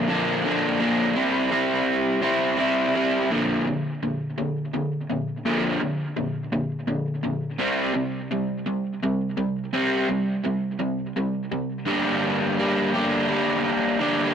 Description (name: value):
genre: rock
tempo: 56 BPM (dotted quarters)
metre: 6/8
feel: straight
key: unclear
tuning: A4 = 441 Hz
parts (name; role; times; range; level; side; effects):
- crunchy overdriven guitar; solo; 0.0-14.3 s; G2 to G4; -22 LUFS; equal; tape echo
room: moderate studio ambience, RT60 0.5 s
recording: rough rehearsal-room recording, tube saturation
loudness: -22 LUFS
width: side -8 dB against mid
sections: 0.0-3.3 A section; 3.3-11.9 B section; 11.9-14.3 C section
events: none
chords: 0.0 Bb; 1.2 C; 3.3 Bb; 7.6 C5; 11.9 Gm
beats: 0.10 | 1.17 2.24 | 3.32 4.39 | 5.46 6.53 | 7.60 8.67 | 9.74 10.81 | 11.88 12.95 | 14.01